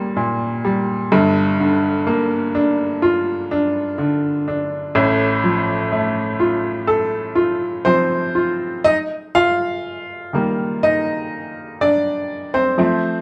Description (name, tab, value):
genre	pop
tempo	62 BPM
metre	4/4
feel	straight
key	unclear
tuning	A4 = 439 Hz
part	bright upright piano	solo	0.0-13.2 s	Eb1 to F5	-19 LUFS	equal	none
room	moderate stone room reverb, RT60 1.0 s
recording	band playing live in one room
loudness	-19 LUFS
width	mono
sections	0.0-8.9 A section; 8.9-13.2 B section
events	upright piano solo 8.9-13.2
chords	0.0 Eb; 1.1 Gm7; 4.9 F/A; 8.9 Ebadd9